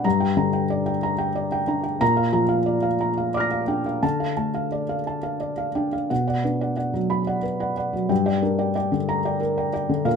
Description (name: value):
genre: neoclassical minimalist piano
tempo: 60 BPM (dotted quarters)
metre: 6/8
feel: uneven beats, rubato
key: unclear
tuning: A4 = 440 Hz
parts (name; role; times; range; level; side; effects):
- felt-muted upright piano; solo; 0.0-10.2 s; G2 to A#6; -21 LUFS; left 1 dB; none
room: light reverb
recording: minimal, uncompressed stereo recording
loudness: -21 LUFS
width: side -6 dB against mid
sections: 0.0-6.1 A section; 6.1-10.2 B section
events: none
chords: 0.0 Gm; 2.0 A#; 4.0 Dm; 6.1 Bm; 8.1 Gm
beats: | 0.05 1.03 | 2.01 3.00 | 4.03 5.07 | 6.10 7.11 | 8.11 9.09 | 10.06